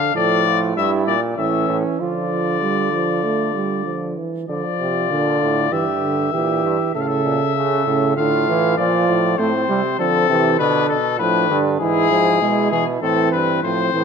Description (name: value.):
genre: classical, imitative canzona for brass ensemble.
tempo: 98 BPM.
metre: 4/4.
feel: straight.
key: D minor.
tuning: A4 = 440 Hz.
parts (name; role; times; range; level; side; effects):
clear trumpet; melody; 0.0-14.0 s; G#4 to F5; -20 LUFS; left 10 dB; none.
mellow flugelhorn; second line; 0.0-14.0 s; C4 to A4; -24 LUFS; right 8 dB; none.
warm trombone; accompaniment; 0.0-14.0 s; C#3 to A3; -22 LUFS; right 3 dB; none.
brilliant bass trombone; bass; 0.2-14.0 s; G2 to D3; -23 LUFS; right 2 dB; none.
room: moderate scoring stage reverb, RT60 1.8 s.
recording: close, detailed microphones.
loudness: -16 LUFS.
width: side -6 dB against mid.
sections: 0.0-4.5 A section; 4.5-14.0 B section.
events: none.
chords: 0.0 Dm; 0.8 Edim/G; 1.4 A; 2.0 Dm; 5.7 Edim/G; 6.9 A; 8.2 Dm/A; 9.4 Am; 10.6 Bdim; 11.8 E/G#; 13.0 Am.